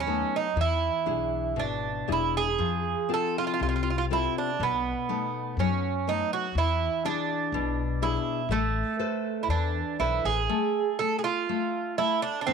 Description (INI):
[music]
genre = fado-style ballad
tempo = 60 BPM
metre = 2/4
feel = rubato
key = A harmonic minor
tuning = A4 = 440 Hz
[part]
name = Irish bouzouki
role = melody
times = 0.0-12.5 s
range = A3 to A4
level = -27 LUFS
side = right 8 dB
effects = none
[part]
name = nylon-string guitar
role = accompaniment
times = 0.0-12.5 s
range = B2 to C5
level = -31 LUFS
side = left 14 dB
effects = none
[part]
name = upright bass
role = bass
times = 0.0-10.5 s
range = E1 to F#2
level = -30 LUFS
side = left 2 dB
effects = none
[sound]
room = light reverb, studio reverb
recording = 1960s-style stereo with parts hard left and right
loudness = -25 LUFS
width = side -6 dB against mid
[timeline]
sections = 0.0-10.5 A section; 10.5-12.5 A section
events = none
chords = 0.0 B7; 0.6 E7; 2.6 F; 4.6 B7; 6.6 E7; 8.5 Amadd9; 10.5 N.C.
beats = | 0.56 1.57 | 2.59 3.60 | 4.59 5.58 | 6.55 7.52 | 8.50 9.49 | 10.49 11.49 | 12.48